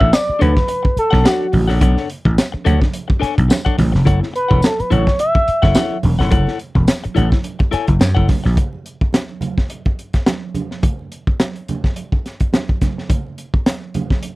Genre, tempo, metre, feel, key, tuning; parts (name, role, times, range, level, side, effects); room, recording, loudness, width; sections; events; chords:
funk; 106 BPM; 4/4; swing 56% on 16ths; A4 = 444 Hz
expressive synth lead; melody; 0.0-6.0 s; F#4 to E5; -17 LUFS; equal; chorus
clean electric guitar; accompaniment; 0.0-8.5 s; D4 to G#5; -22 LUFS; left 6 dB
vintage slap bass; bass; 0.0-8.6 s; E1 to F#2; -15 LUFS; equal
crunchy breakbeat drum kit; drums; 0.0-14.4 s; hi-hat, kick drum, snare drum; -16 LUFS; equal
congas; percussion; 0.1-14.4 s; -25 LUFS; right 4 dB
tambourine; percussion; 0.1-8.2 s; -32 LUFS; left 2 dB
little or no reverb; dry, close 1970s-style studio recording; -14 LUFS; side -20 dB against mid
0.0-8.6 A section; 8.6-14.4 B section
0.0 Bm9 (rootless); 4.1 F#m7; 8.6 N.C.